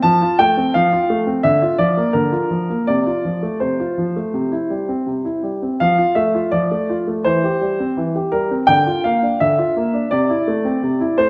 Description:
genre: classical-period piano sonatina.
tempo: 84 BPM.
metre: 4/4.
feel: rubato.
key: F major.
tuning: A4 = 440 Hz.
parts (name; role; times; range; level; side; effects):
clear baby grand piano; solo; 0.0-11.3 s; C3 to A5; -18 LUFS; equal; none.
room: wet recital hall reverb, RT60 1.7 s.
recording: dark, warm production.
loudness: -18 LUFS.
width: mono.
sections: 0.0-11.3 A section.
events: none.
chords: 0.0 F; 1.4 Bb/D; 2.9 F/C; 4.3 C; 5.8 Dm/F; 7.3 C/E; 8.7 Bb/D; 10.1 Am/C.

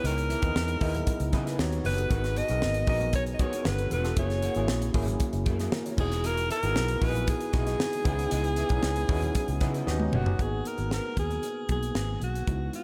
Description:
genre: polished 1980s jazz-funk pop.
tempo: 116 BPM.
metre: 4/4.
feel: straight.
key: G# minor.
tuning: A4 = 441 Hz.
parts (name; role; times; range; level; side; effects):
bright alto saxophone; melody; 0.0-12.8 s; D#4 to D#5; -34 LUFS; equal; slapback echo.
tine electric piano; accompaniment; 0.0-12.8 s; G#3 to D#5; -36 LUFS; equal; overdrive, tube saturation, subtle chorus, slapback echo.
electric guitar at the edge of break-up; riff; 0.0-10.3 s; B3 to F#5; -43 LUFS; equal; analog chorus, slapback echo.
vintage muted fingered electric bass; bass; 0.0-12.7 s; E1 to C#3; -32 LUFS; equal; none.
tight funk drum kit; drums; 0.0-12.8 s; crash cymbal, hi-hat, kick drum, snare drum, toms; -33 LUFS; equal; none.
congas; percussion; 0.0-12.8 s; none; -44 LUFS; equal; none.
room: light reverb.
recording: none.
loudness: -28 LUFS.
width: mono.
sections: 0.0-10.4 A section; 10.4-12.8 B section.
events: drum fill 9.9-10.4.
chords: 0.0 C#m9; 1.6 D#7alt; 2.1 G#m9; 3.7 G9; 4.2 F#9; 6.0 Emaj9; 8.1 C#m9; 9.9 D#7alt; 10.4 G#m7.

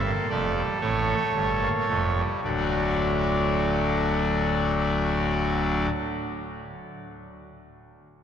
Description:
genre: classical, baroque-style 4-part fugue for pipe organ.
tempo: 35-41 BPM (dotted quarters).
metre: 6/8.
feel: straight.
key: unclear.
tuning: A4 = 440 Hz.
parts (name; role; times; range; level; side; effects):
pipe organ, trumpet; solo; 0.0-5.9 s; D1 to E5; -23 LUFS; equal; none.
room: wet cathedral reverb, RT60 5.2 s.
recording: worn, warbling old tape, cassette tape, warbly pitch drift.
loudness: -22 LUFS.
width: side -8 dB against mid.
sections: 0.0-2.4 A section; 2.4-5.8 B section.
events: slowing down 0.0-2.4.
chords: 0.0 Dm; 0.8 A7; 2.4 D.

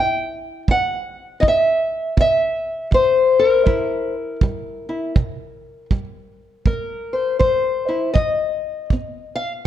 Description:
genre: acoustic country blues, solo or duo.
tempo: 80 BPM.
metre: 4/4.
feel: swing 62% on 8ths.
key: C mixolydian.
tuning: A4 = 437 Hz.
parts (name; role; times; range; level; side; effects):
fingerpicked acoustic archtop guitar; melody; 0.0-9.6 s; C3 to G5; -18 LUFS; left 2 dB; none.
kick drum; drums; 0.7-9.1 s; none; -18 LUFS; right 2 dB; none.
room: light reverb.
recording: dark, warm production.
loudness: -17 LUFS.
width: side -11 dB against mid.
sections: 0.0-9.7 A section.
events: none.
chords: 0.0 C7; 8.2 F7(no3).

